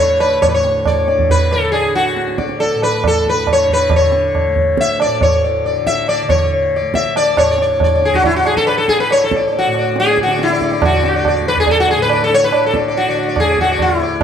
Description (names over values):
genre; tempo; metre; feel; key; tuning
indian classical, Hindustani; 139 BPM; 4/4; straight; D raga yaman; A4 = 441 Hz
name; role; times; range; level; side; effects
sitar; melody; 0.0-14.2 s; E4 to E5; -14 LUFS; left 2 dB; none
tanpura; drone; 0.0-14.2 s; D2 to D3; -24 LUFS; left 1 dB; none
tabla; percussion; 0.2-14.2 s; none; -18 LUFS; right 4 dB; none
room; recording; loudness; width
moderate scoring stage reverb, RT60 1.7 s; dark, warm production; -12 LUFS; side -8 dB against mid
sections
0.0-7.4 A section; 7.4-14.2 B section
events
speeding up 0.0-14.2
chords
none